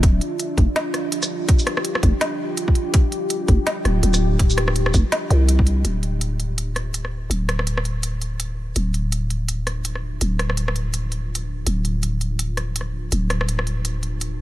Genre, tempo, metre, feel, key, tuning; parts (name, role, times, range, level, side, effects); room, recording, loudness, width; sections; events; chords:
half-time drum and bass; 165 BPM; 4/4; swing 57% on 16ths, half-time; D minor; A4 = 438 Hz
deep dark ambient pad; sustained chords; 0.0-14.4 s; D4 to A5; -29 LUFS; equal; chorus, built-in reverb, sidechain pumping
growling 808-style bass; bass; 0.0-14.4 s; D1 to C2; -21 LUFS; equal
electronic kick drum; drums; 0.0-5.7 s; -16 LUFS; equal
organic electronic drum kit; drums; 0.0-14.3 s; hi-hat, rim click, shaker, snare drum; -25 LUFS; equal
digital ambience; lossy compression artefacts; -19 LUFS; side -15 dB against mid
0.0-5.8 A section; 5.8-14.4 B section
drop 0.0-5.8
0.0 Dm; 5.8 Dmadd9